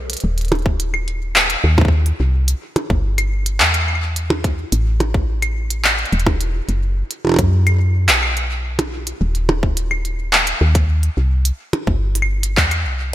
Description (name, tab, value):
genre	IDM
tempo	107 BPM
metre	4/4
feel	straight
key	unclear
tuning	A4 = 436 Hz
part	woody FM bass	bass	0.0-13.1 s	Eb1 to F#2	-18 LUFS	equal	tube saturation
part	glitchy drum kit	drums	0.1-12.8 s	claves, handclaps, hi-hat, percussion blips	-18 LUFS	equal	overdrive, gated reverb
part	electronic kick drum	drums	0.7-12.7 s	none	-18 LUFS	equal	overdrive
room	light reverb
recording	bright 1980s-style digital production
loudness	-15 LUFS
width	side -13 dB against mid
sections	0.0-13.1 A section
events	none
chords	none